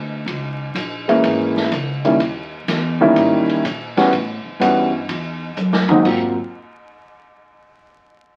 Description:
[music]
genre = jazz piano trio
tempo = 125 BPM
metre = 4/4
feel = swing 68% on 8ths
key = unclear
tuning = A4 = 441 Hz
[part]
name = upright bass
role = bass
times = 0.0-6.4 s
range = G#1 to A#2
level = -28 LUFS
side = equal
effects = none
[part]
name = swinging big-band drum kit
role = drums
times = 0.3-6.2 s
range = crash cymbal, hi-hat, kick drum, ride cymbal, snare drum, toms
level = -28 LUFS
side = equal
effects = none
[part]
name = warm baby grand piano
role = melody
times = 1.1-6.4 s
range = G#2 to F#4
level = -17 LUFS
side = equal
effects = none
[sound]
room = moderate studio reverb, RT60 0.7 s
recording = very old 78 rpm record, vinyl crackle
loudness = -18 LUFS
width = mono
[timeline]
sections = 0.0-6.0 A section; 6.0-8.0 B section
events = drum fill 5.6-6.0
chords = 0.3 A#m7b5; 2.2 D#7b9; 4.1 A7(no3); 6.0 N.C.

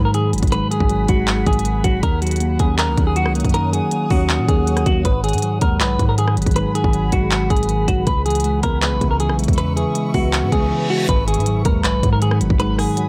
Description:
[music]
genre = hip hop, trap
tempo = 159 BPM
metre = 4/4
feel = half-time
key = G# minor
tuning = A4 = 442 Hz
[part]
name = clean electric guitar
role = melody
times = 0.0-13.1 s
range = F#4 to B4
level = -25 LUFS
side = equal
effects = lush chorus, delay
[part]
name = mellow tine electric piano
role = accompaniment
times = 0.0-13.1 s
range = G#2 to C#4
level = -24 LUFS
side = equal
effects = none
[part]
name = granular cloud pad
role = sustained chords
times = 0.2-13.1 s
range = G#4 to D#6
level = -33 LUFS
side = equal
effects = built-in reverb
[part]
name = long sustained 808-style bass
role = bass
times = 0.0-12.9 s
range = F#1 to A#2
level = -24 LUFS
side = equal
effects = none
[part]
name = trap drum kit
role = drums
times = 0.1-13.1 s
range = handclaps, hi-hat, kick drum, rim click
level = -22 LUFS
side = equal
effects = none
[part]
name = reverse cymbal and impact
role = sound effects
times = 10.6-12.6 s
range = none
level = -32 LUFS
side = equal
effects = none
[sound]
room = little or no reverb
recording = none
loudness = -18 LUFS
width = mono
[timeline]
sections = 0.0-11.1 A section; 11.1-13.1 B section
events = reverse cymbal 10.6-11.1; impact 11.1-12.6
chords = 0.0 G#m7; 2.0 D#m7; 5.0 G#m7; 8.1 C#m7; 11.1 G#m7

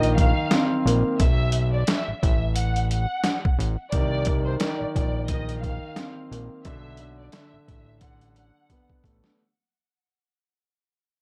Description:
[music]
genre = hip hop, boom-bap hip-hop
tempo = 88 BPM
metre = 4/4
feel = swing 58% on 16ths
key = unclear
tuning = A4 = 440 Hz
[part]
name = warm studio violin section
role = melody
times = 0.0-8.9 s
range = C5 to F#5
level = -33 LUFS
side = equal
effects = high-pass filter, low-pass filter, tape echo
[part]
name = dark baby grand piano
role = accompaniment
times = 0.0-9.4 s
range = D3 to C4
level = -30 LUFS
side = equal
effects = high-pass filter, low-pass filter
[part]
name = fat analog bass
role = bass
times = 0.0-9.2 s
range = A1 to C2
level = -27 LUFS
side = equal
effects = none
[part]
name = trip hop sampler-style drum kit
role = drums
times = 0.0-9.4 s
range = hi-hat, kick drum, snare drum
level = -27 LUFS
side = equal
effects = none
[sound]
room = little or no reverb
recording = none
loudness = -24 LUFS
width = mono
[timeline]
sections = 0.0-9.4 A section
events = fade-out 0.0-9.4; break 1.2-3.9; drum fill 8.7-9.4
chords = 0.0 Cm7; 1.2 D69 (rootless); 3.9 Cm7; 6.7 Bm7

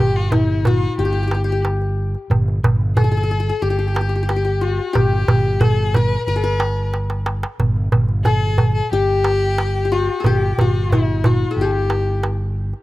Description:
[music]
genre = Arabic maqam ensemble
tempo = 91 BPM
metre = 4/4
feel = straight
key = G maqam huzam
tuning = A4 = 441 Hz
[part]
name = qanun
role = melody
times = 0.0-12.8 s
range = E4-50c to Bb4+50c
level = -22 LUFS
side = left 4 dB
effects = none
[part]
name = rich violin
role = second line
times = 0.0-12.2 s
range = Eb4+46c to B4-49c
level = -25 LUFS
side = left 2 dB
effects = none
[part]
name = fretless electric bass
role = bass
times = 0.0-12.7 s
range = G1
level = -20 LUFS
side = equal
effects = none
[part]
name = darbuka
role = percussion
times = 0.2-12.8 s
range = none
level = -18 LUFS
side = right 1 dB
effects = none
[sound]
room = little or no reverb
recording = rough home demo mix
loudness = -16 LUFS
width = side -17 dB against mid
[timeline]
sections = 0.0-12.8 A section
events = drum fill 6.9-7.6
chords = none

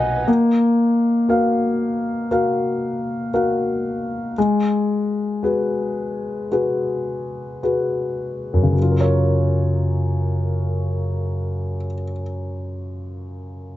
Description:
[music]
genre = pop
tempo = 52-60 BPM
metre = 4/4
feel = straight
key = F# major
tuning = A4 = 440 Hz
[part]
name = dark grand piano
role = accompaniment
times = 0.0-13.8 s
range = F#2 to G#5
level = -19 LUFS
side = left 1 dB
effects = none
[sound]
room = moderate small room reverb, RT60 0.5 s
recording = nothing above 7.9 kHz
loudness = -18 LUFS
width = side -14 dB against mid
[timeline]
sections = 0.0-8.8 A section; 8.8-13.3 B section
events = grand piano fill 0.0; slowing down 0.3-8.8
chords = 0.3 F#maj7/A#; 4.4 G#m7; 8.8 F#maj7

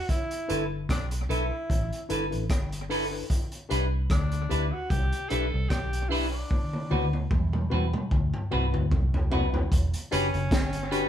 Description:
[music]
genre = lovers rock reggae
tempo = 75 BPM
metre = 4/4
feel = swing 55% on 16ths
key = unclear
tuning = A4 = 440 Hz
[part]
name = breathy tenor saxophone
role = melody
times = 0.0-11.1 s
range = C#4 to A4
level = -34 LUFS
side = right 1 dB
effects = none
[part]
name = crunchy breakbeat drum kit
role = drums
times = 0.1-11.1 s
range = hi-hat, kick drum, rim click, snare drum, toms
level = -28 LUFS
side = equal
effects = none
[part]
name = tine electric piano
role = accompaniment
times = 0.5-11.1 s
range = C4 to B4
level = -34 LUFS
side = left 5 dB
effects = none
[part]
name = clean electric guitar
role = stabs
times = 0.5-11.1 s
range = C4 to B4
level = -31 LUFS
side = right 1 dB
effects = none
[part]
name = vintage muted fingered electric bass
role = bass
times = 0.5-11.1 s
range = E1 to E2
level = -28 LUFS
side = equal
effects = none
[sound]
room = moderate studio reverb, RT60 0.7 s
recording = band playing live in one room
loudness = -25 LUFS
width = side -10 dB against mid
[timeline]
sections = 0.0-9.7 A section; 9.7-11.1 B section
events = drum fill 6.5-9.7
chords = 0.1 G69; 3.3 Cmaj9; 6.5 D13; 9.7 Em7

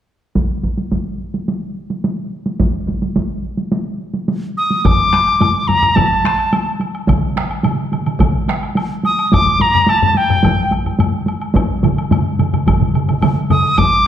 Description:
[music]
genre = japanese traditional, taiko drum ensemble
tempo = 107 BPM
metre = 4/4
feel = straight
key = D miyako bushi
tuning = A4 = 443 Hz
[part]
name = solo taiko drums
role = percussion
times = 0.4-14.0 s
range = none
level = -20 LUFS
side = right 2 dB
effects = none
[part]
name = taiko ensemble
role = percussion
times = 0.4-13.9 s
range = none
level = -19 LUFS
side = equal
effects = none
[part]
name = piccolo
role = melody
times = 4.6-14.1 s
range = G5 to Eb6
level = -14 LUFS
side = equal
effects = none
[part]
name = taiko ensemble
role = percussion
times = 4.9-13.9 s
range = none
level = -19 LUFS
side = left 4 dB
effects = none
[part]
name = woodblock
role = percussion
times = 4.9-13.9 s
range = none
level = -27 LUFS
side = left 2 dB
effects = none
[part]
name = taiko ensemble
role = percussion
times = 7.1-13.6 s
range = none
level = -18 LUFS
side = right 4 dB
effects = none
[sound]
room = wet recital hall reverb, RT60 1.3 s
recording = dark, warm production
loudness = -14 LUFS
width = side -10 dB against mid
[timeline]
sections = 0.4-4.8 A section; 4.8-14.1 B section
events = none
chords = none

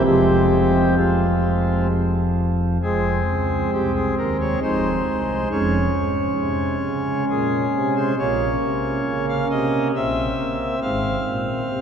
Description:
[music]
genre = classical, chorale-style piece for pipe organ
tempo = 67 BPM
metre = 3/4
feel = straight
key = F minor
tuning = A4 = 440 Hz
[part]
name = pipe organ, cornet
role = solo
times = 0.0-11.8 s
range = F1 to F5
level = -18 LUFS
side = equal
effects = none
[sound]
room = wet cathedral reverb, RT60 4.8 s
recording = recorded in a church or concert hall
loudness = -18 LUFS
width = side -7 dB against mid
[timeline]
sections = 0.0-2.8 A section; 2.8-11.8 B section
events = none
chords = 0.0 Fm; 4.6 Ab/F; 5.5 Db/F; 8.2 Bbmadd9; 9.9 C7/Bb; 10.8 Fm/Ab

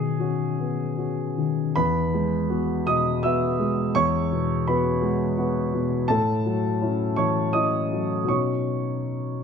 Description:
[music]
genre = neoclassical minimalist piano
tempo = 83 BPM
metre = 3/4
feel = uneven beats, rubato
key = E major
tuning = A4 = 440 Hz
[part]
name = dark grand piano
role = solo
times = 0.0-9.4 s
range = E2 to E6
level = -22 LUFS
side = left 1 dB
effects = slapback echo
[sound]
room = light reverb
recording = close, detailed microphones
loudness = -22 LUFS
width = side -6 dB against mid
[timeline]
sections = 0.0-1.8 A section; 1.8-9.4 B section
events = none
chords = 0.0 Badd9; 1.8 Eadd9; 6.1 A6; 8.3 Badd9

